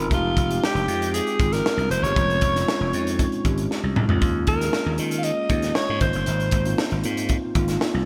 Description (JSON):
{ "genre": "polished 1980s jazz-funk pop", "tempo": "117 BPM", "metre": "4/4", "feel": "straight", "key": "Ab major", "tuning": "A4 = 439 Hz", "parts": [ { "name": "mellow tine electric piano", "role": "accompaniment", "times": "0.0-8.1 s", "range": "Ab3 to Bb4", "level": "-29 LUFS", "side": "equal", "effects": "lush chorus" }, { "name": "slap bass", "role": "bass", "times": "0.0-8.0 s", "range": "F1 to Eb3", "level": "-27 LUFS", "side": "equal", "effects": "none" }, { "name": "breathy alto saxophone", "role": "melody", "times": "0.1-7.0 s", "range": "F4 to F5", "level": "-28 LUFS", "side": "equal", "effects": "none" }, { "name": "crisp fusion drum kit", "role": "drums", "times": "0.1-7.9 s", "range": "hi-hat, kick drum, snare drum, toms", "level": "-27 LUFS", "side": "equal", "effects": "gated reverb" } ], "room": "moderate lush hall reverb, RT60 2.7 s", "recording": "bright 1980s-style digital production", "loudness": "-22 LUFS", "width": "mono", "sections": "0.0-8.1 A section", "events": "drum fill 3.7-4.2", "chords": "0.1 Fm9; 2.2 Dbmaj9#11/F; 4.2 Eb7sus4; 6.0 Ab6", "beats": "| 0.10 0.62 1.13 1.65 | 2.16 2.67 3.19 3.70 | 4.21 4.73 5.24 5.75 | 6.27 6.78 7.29 7.81" }